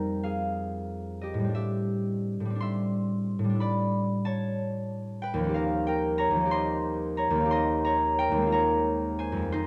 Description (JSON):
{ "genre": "classical, solo harp piece", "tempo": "61 BPM (dotted quarters)", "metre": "6/8", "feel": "rubato", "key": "unclear", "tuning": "A4 = 440 Hz", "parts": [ { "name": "concert harp", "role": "solo", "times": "0.0-9.7 s", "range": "Eb2 to C6", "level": "-28 LUFS", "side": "equal", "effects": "none" } ], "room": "moderate recital hall reverb, RT60 1.4 s", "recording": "close, detailed microphones", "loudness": "-28 LUFS", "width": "mono", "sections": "0.0-9.7 A section", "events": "none", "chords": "0.0 Fm11; 1.5 Am7; 3.6 Em7/A; 5.6 Eb13; 7.5 Cm7/Eb; 8.5 Bbm9/Eb" }